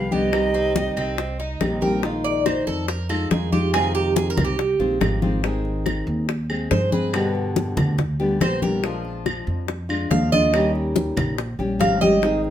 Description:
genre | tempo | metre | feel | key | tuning
latin, Cuban son and guajira | 141 BPM | 4/4 | straight | unclear | A4 = 440 Hz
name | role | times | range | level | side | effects
bright concert flute | melody | 0.0-2.0 s | Eb5 to G5 | -26 LUFS | right 5 dB | none
nylon-string guitar | accompaniment | 0.0-12.5 s | B2 to Ab4 | -24 LUFS | left 2 dB | none
Cuban tres | arpeggios | 0.0-12.4 s | C4 to F5 | -24 LUFS | right 3 dB | none
upright bass | bass | 0.0-12.5 s | Ab1 to G2 | -26 LUFS | right 1 dB | none
congas | percussion | 0.1-12.5 s | none | -26 LUFS | left 2 dB | none
bongos | percussion | 0.3-12.4 s | none | -27 LUFS | left 6 dB | none
claves | percussion | 0.3-12.0 s | none | -33 LUFS | right 2 dB | none
room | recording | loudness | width
moderate studio reverb, RT60 0.8 s | minimal, uncompressed stereo recording | -19 LUFS | side -11 dB against mid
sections
0.0-2.0 A section; 2.0-12.5 B section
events
Cuban tres solo 2.0-12.5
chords
0.3 Cm; 2.0 Bb7sus4; 3.7 Fm7; 5.4 Ab; 7.1 G; 8.8 Bb7; 10.5 Eb7

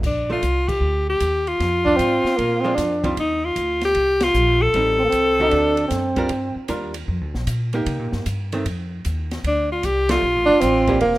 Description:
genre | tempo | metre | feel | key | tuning
jazz, small-group swing and bop | 153 BPM | 4/4 | swing 66% on 8ths | Bb major | A4 = 443 Hz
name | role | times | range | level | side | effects
upright bass | bass | 0.0-11.2 s | E1 to C3 | -25 LUFS | equal | none
open jazz drum kit | drums | 0.0-11.2 s | crash cymbal, hi-hat, kick drum, ride cymbal, snare drum | -31 LUFS | equal | none
edgy alto saxophone | melody | 0.1-6.2, 9.5-11.0 s | D4 to A4 | -19 LUFS | left 1 dB | none
archtop guitar, miked and amplified | accompaniment | 0.3-11.0 s | D3 to Bb4 | -27 LUFS | right 1 dB | none
breathy tenor saxophone | second line | 1.9-6.6, 10.5-11.2 s | Bb3 to Eb4 | -19 LUFS | right 2 dB | none
room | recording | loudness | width
light reverb, small room ambience | rough home demo mix | -18 LUFS | side -17 dB against mid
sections
0.0-11.2 A section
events
band accent 0.6, 4.2, 10.0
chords
0.0 Bb; 1.6 Fm; 2.4 Bb7; 3.2 Eb69; 4.7 Am7b5; 5.5 D7; 6.3 Gm7; 7.9 Cm7; 8.7 Ebsus2; 9.4 Bbmaj7

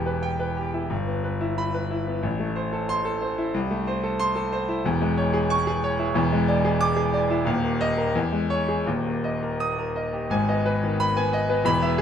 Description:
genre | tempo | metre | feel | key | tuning
classical, virtuoso piano study | 91 BPM | 2/4 | rubato | G# minor from 4.8 s | A4 = 440 Hz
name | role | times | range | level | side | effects
clear concert grand piano | solo | 0.0-12.0 s | D#1 to D#6 | -22 LUFS | equal | none
room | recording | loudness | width
moderate large studio reverb, RT60 1.3 s | none | -22 LUFS | side -8 dB against mid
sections
0.0-10.3 A section; 10.3-12.0 B section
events
none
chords
0.0 Em; 0.9 Em/G; 2.2 Am; 3.5 Am/C; 4.8 C#m/E; 6.2 E7; 7.5 D#5; 8.1 C#m/E; 8.9 D#; 10.3 G#m

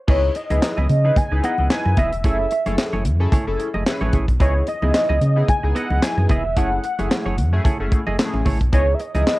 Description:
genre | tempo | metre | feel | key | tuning
early-eighties boogie funk | 111 BPM | 4/4 | swing 56% on 16ths | C# minor | A4 = 439 Hz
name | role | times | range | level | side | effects
warm velvety synth lead | melody | 0.1-9.4 s | C#5 to G#5 | -23 LUFS | equal | chorus, phaser, cassette tape
chorused polysynth | accompaniment | 0.1-9.4 s | A3 to B4 | -28 LUFS | left 1 dB | phaser
semi-hollow electric guitar | riff | 0.1-9.3 s | A3 to D#5 | -28 LUFS | right 2 dB | analog chorus
sub bass with octave | bass | 0.1-9.2 s | D#1 to C#3 | -20 LUFS | equal | none
tight funk drum kit | drums | 0.1-9.4 s | crash cymbal, handclaps, hi-hat, kick drum, snare drum | -20 LUFS | equal | cassette tape
congas | percussion | 0.5-9.4 s | none | -30 LUFS | equal | none
room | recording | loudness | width
small room reverb | home recording on cassette | -17 LUFS | side -18 dB against mid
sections
0.1-9.4 A section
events
none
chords
0.1 C#m9; 2.2 F#m9; 4.4 C#m9; 6.6 F#m9; 8.7 C#m9

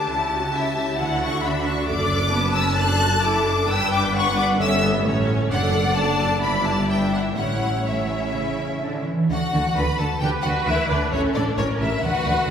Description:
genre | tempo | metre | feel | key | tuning
quick classical-period movement for string orchestra | 132 BPM | 4/4 | rubato | D major | A4 = 440 Hz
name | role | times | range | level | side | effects
clear symphonic violin section | melody | 0.0-12.5 s | C#5 to F#6 | -26 LUFS | left 4 dB | none
rich studio violin section | second line | 0.0-12.5 s | C#4 to A5 | -26 LUFS | left 2 dB | none
clear symphonic viola section | accompaniment | 0.0-12.5 s | B3 to B4 | -26 LUFS | right 1 dB | none
clear symphonic double bass section | bass | 0.0-12.5 s | F#1 to D2 | -27 LUFS | right 1 dB | none
warm symphonic cello section | bass | 0.0-12.5 s | F#2 to E3 | -25 LUFS | right 1 dB | none
room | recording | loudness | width
wet concert hall reverb, RT60 2.2 s | heard from further back in the room | -19 LUFS | side -8 dB against mid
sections
0.0-9.3 A section; 9.3-12.5 B section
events
none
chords
0.1 A7/C#; 1.0 D; 1.9 D/F#; 3.7 G; 4.6 A7/G; 5.5 D/F#; 6.4 Em7/G; 7.4 A; 9.3 D; 11.1 Aadd11

